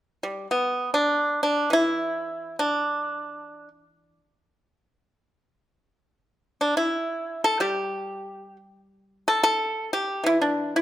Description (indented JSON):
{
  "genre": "chinese traditional, Chinese solo plucked strings",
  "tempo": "free time",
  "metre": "none",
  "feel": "none",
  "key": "unclear",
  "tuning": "A4 = 439 Hz",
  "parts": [
    { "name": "pipa", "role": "solo", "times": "0.2-10.8 s", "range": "E3 to A4", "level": "-23 LUFS", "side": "equal", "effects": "none" }
  ],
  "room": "moderate recital hall reverb, RT60 1.4 s",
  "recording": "none",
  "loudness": "-22 LUFS",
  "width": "side -13 dB against mid",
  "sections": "0.0-6.2 A section; 6.2-10.8 B section",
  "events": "none",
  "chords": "none",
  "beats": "free time"
}